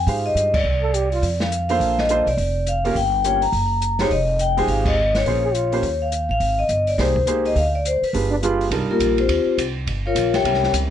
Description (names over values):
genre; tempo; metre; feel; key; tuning
jazz, small-group swing and bop; 208 BPM; 4/4; swing 62% on 8ths; C minor; A4 = 437 Hz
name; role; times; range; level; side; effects
vibraphone with medium hard mallets; melody; 0.0-10.7 s; Bb3 to Bb5; -20 LUFS; left 3 dB; none
upright bass; bass; 0.0-10.9 s; F1 to Ab2; -23 LUFS; right 1 dB; none
warm grand piano; accompaniment; 0.1-10.9 s; G3 to Db5; -25 LUFS; right 6 dB; none
open jazz drum kit; drums; 0.1-10.8 s; crash cymbal, hi-hat, kick drum, ride cymbal, snare drum; -28 LUFS; equal; none
breathy trombone; second line; 0.8-1.3, 5.4-5.9, 8.3-8.7 s; D4 to A4; -24 LUFS; right 4 dB; none
room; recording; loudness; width
light reverb; nothing above 10.7 kHz; -18 LUFS; side -10 dB against mid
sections
0.0-8.7 A section; 8.7-10.9 B section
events
band accent 0.5, 4.8; vibraphone solo 8.7-10.9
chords
0.0 Fm9; 0.6 Csus2; 1.2 F; 1.8 Bbmaj7; 3.0 Gm7b5; 3.5 F#69; 4.1 Fm7; 5.3 Bbm7; 5.8 Ebsus2; 6.4 Abmaj7; 7.6 Dm7; 8.1 G7b9; 8.7 Cm11; 9.9 Gm7b5